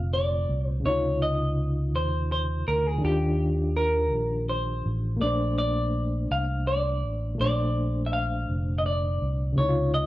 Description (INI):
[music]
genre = slow six-eight R&B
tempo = 55 BPM (dotted quarters)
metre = 6/8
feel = straight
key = Bb major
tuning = A4 = 440 Hz
[part]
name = semi-hollow electric guitar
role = melody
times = 0.0-10.1 s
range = G4 to F5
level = -28 LUFS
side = equal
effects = harmonic tremolo, slapback echo
[part]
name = overdriven reed electric piano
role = accompaniment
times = 0.0-10.1 s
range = Bb2 to C5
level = -30 LUFS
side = left 1 dB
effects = fast tremolo
[part]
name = fingered electric bass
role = bass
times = 0.0-10.1 s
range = F1 to Eb2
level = -27 LUFS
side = equal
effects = tube saturation
[sound]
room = light reverb, digital ambience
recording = worn, warbling old tape, cassette tape, warbly pitch drift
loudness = -24 LUFS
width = side -16 dB against mid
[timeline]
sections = 0.0-10.1 A section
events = none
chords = 0.0 Bbmaj9; 0.8 Dbmaj9; 3.0 Ebmaj9; 5.2 Bbmaj9